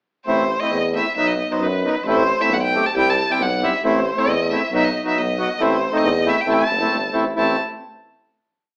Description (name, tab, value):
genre	klezmer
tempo	136 BPM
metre	2/4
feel	straight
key	A dorian sharp4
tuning	A4 = 440 Hz
part	rich violin	melody	0.2-7.6 s	B4 to A5	-23 LUFS	equal	none
part	accordion	accompaniment	0.3-7.6 s	F#3 to G4	-23 LUFS	equal	none
part	clear tuba	bass	0.3-7.6 s	F#1 to F#2	-26 LUFS	equal	none
room	wet large studio reverb, RT60 0.8 s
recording	band playing live in one room, AM radio sound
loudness	-19 LUFS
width	mono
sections	0.3-7.4 A section; 7.4-8.2 final chord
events	none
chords	0.3 Am; 1.2 B; 2.1 Am; 2.9 C; 3.8 Am; 4.7 B; 5.6 Am